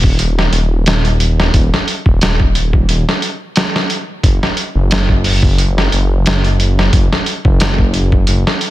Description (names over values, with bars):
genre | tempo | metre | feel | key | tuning
trip hop | 89 BPM | 4/4 | swing 54% on 16ths | Eb minor | A4 = 440 Hz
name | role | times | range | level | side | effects
dark detuned saw bass | bass | 0.0-8.4 s | Eb1 to Gb1 | -13 LUFS | equal | tube saturation
trip hop sampler-style drum kit | drums | 0.0-8.7 s | hi-hat, kick drum, snare drum | -13 LUFS | equal | none
room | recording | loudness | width
little or no reverb | dense, heavily limited modern master | -11 LUFS | side -16 dB against mid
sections
0.0-8.7 A section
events
none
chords
none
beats
0.19 0.86 | 1.53 2.21 2.88 3.56 | 4.23 4.91 5.58 6.25 | 6.93 7.60 8.28